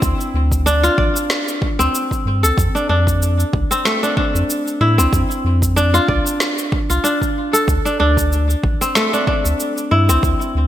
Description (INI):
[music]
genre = organic downtempo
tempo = 94 BPM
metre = 4/4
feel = swing 55% on 16ths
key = D minor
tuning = A4 = 439 Hz
[part]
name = kora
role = arpeggios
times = 0.0-10.7 s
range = A3 to D5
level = -18 LUFS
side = equal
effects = digital delay
[part]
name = warm sub bass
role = bass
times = 0.0-10.7 s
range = A1 to A2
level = -16 LUFS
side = equal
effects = sidechain pumping
[part]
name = electronic kick drum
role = drums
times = 0.0-10.4 s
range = none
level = -21 LUFS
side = equal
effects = overdrive
[part]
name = electronic shaker and snare drum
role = drums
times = 0.0-10.5 s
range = none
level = -22 LUFS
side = right 1 dB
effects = gated reverb
[sound]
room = moderate lush hall reverb, RT60 1.8 s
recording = bright 1980s-style digital production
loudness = -14 LUFS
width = side -12 dB against mid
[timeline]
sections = 0.0-10.7 A section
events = none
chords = 0.0 Dm7; 2.6 Fmaj7; 7.7 Dm7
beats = | 0.02 0.66 1.30 1.94 | 2.58 3.21 3.85 4.49 | 5.13 5.77 6.41 7.04 | 7.68 8.32 8.96 9.60 | 10.23